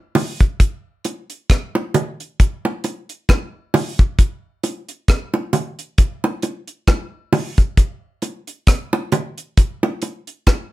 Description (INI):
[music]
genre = reggae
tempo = 67 BPM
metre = 4/4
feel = swing 56% on 16ths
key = none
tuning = none
[part]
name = deep reggae drum kit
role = drums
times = 0.1-10.7 s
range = hi-hat, kick drum, rim click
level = -15 LUFS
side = equal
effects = none
[part]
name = bongos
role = percussion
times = 0.2-10.7 s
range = none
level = -19 LUFS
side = right 2 dB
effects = none
[sound]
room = light reverb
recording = none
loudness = -17 LUFS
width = side -17 dB against mid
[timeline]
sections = 0.0-10.7 A section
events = none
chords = none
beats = | 0.60 1.50 2.39 3.29 | 4.19 5.08 5.98 6.88 | 7.78 8.68 9.57 10.47